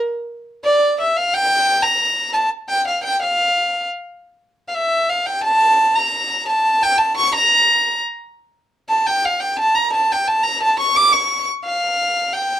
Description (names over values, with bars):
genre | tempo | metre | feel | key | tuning
klezmer | 87 BPM | 3/4 | straight | unclear | A4 = 442 Hz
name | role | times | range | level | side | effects
bright violin | solo | 0.6-12.6 s | D5 to D6 | -15 LUFS | equal | none
room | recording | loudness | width
light reverb | dark, warm production | -15 LUFS | side -11 dB against mid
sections
0.0-11.7 A section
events
violin solo 0.0-11.7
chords
none